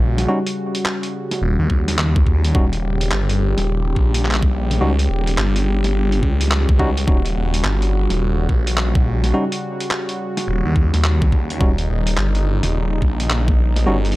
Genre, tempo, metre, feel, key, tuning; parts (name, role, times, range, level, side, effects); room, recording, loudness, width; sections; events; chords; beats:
glitch hop; 106 BPM; 4/4; swing 63% on 16ths; A4 = 439 Hz
warm analog pad; sustained chords; 0.0-14.2 s; Db3 to G4; -25 LUFS; left 1 dB; chorus, sidechain pumping
phased detuned saw bass; bass; 0.0-14.1 s; Eb1 to Eb2; -18 LUFS; equal; phaser, overdrive
boom bap sampler-style drum kit; drums; 0.2-14.1 s; handclaps, hi-hat, snare drum; -23 LUFS; equal
bell-like tine electric piano; stabs; 0.3-14.0 s; G3 to F#4; -22 LUFS; equal; vintage 12-bit sampler grit, sidechain pumping, analog delay
electronic kick drum; drums; 1.7-13.6 s; -16 LUFS; equal
little or no reverb; dry, gritty hardware recording, transformer saturation; -16 LUFS; side -18 dB against mid
0.0-14.2 A section
0.0 Eb7#9
| 0.28 0.85 1.42 1.98 | 2.55 3.11 3.68 4.25 | 4.81 5.38 5.94 6.51 | 7.08 7.64 8.21 8.77 | 9.34 9.91 10.47 11.04 | 11.60 12.17 12.74 13.30 | 13.87